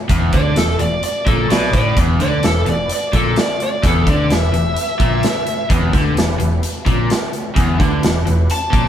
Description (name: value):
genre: blues rock power trio and southern rock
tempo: 128 BPM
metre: 4/4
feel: straight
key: E minor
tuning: A4 = 440 Hz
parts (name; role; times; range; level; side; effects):
- overdriven electric guitar; riff; 0.1-8.9 s; E2 to D3; -19 LUFS; equal; none
- vintage muted fingered electric bass; bass; 0.1-8.9 s; E1 to D2; -20 LUFS; equal; none
- big rock drum kit; drums; 0.1-8.9 s; hi-hat, kick drum, snare drum; -18 LUFS; equal; none
- bluesy overdriven lead guitar; melody; 0.3-5.7, 8.5-8.9 s; A4 to A5; -20 LUFS; equal; distortion
- overdriven tonewheel organ; sustained chords; 2.0-8.5 s; B3 to B4; -29 LUFS; right 3 dB; slow rotary speaker, chorus vibrato
room: moderate studio reverb, RT60 0.5 s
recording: band playing live in one room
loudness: -14 LUFS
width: side -10 dB against mid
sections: 0.0-8.9 A section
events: none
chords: 0.0 Em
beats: | 0.10 0.56 1.03 1.50 | 1.96 2.43 2.90 3.36 | 3.83 4.30 4.76 5.23 | 5.70 6.17 6.63 7.10 | 7.57 8.03 8.50